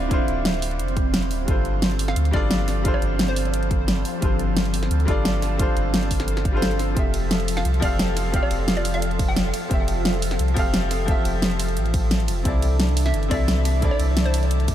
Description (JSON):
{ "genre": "liquid drum and bass", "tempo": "175 BPM", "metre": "4/4", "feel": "straight", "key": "unclear", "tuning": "A4 = 439 Hz", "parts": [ { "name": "clear grand piano", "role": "accompaniment", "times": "0.0-14.7 s", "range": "C3 to F5", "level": "-27 LUFS", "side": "left 1 dB", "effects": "ping-pong delay" }, { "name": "airy breathy pad", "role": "sustained chords", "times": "0.0-14.7 s", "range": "E3 to A4", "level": "-29 LUFS", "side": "equal", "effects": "chorus, phaser" }, { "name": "sub bass with octave", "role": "bass", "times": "0.0-14.7 s", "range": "D1 to D2", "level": "-23 LUFS", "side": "equal", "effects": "none" }, { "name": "electronic kick drum", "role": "drums", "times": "0.1-14.7 s", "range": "none", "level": "-24 LUFS", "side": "equal", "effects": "none" }, { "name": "pop drum kit", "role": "drums", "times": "0.1-14.7 s", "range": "hi-hat, ride cymbal, snare drum", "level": "-26 LUFS", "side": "equal", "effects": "none" }, { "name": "hollow square pluck", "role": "melody", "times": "2.1-3.8, 7.6-9.8, 13.1-14.7 s", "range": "C5 to G5", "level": "-32 LUFS", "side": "equal", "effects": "chorus, cassette tape, tape echo" } ], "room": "light reverb", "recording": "none", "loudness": "-19 LUFS", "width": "side -11 dB against mid", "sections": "0.0-14.7 A section", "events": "none", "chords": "0.0 Dm9; 1.5 G9sus4; 7.0 Fmaj7; 12.5 C69" }